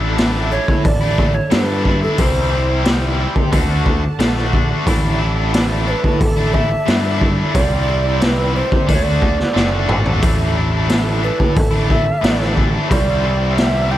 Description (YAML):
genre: psychedelic rock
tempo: 90 BPM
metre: 4/4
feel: straight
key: unclear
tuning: A4 = 438 Hz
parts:
  - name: muted studio string section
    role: sustained chords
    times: 0.0-14.0 s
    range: C4 to A5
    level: -30 LUFS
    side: right 6 dB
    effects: none
  - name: overdriven electric guitar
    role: riff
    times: 0.0-14.0 s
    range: A2 to F#4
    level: -21 LUFS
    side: left 2 dB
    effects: tremolo
  - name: growling picked electric bass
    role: bass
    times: 0.0-14.0 s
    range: F#1 to G2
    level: -19 LUFS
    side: equal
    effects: overdrive
  - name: raw garage drum kit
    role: drums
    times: 0.2-13.7 s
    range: hi-hat, kick drum, snare drum, toms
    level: -17 LUFS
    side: equal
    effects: none
  - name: breathy mellow tenor recorder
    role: melody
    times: 0.5-14.0 s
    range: A4 to G5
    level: -22 LUFS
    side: right 2 dB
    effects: slapback echo
room: light reverb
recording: none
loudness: -14 LUFS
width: side -13 dB against mid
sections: 0.0-14.0 A section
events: drum fill 9.6-10.2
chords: 0.0 Asus4; 2.2 Cadd9; 3.5 D; 4.9 Asus4; 7.5 Cadd9; 8.9 D; 10.2 Asus4; 12.9 Cadd9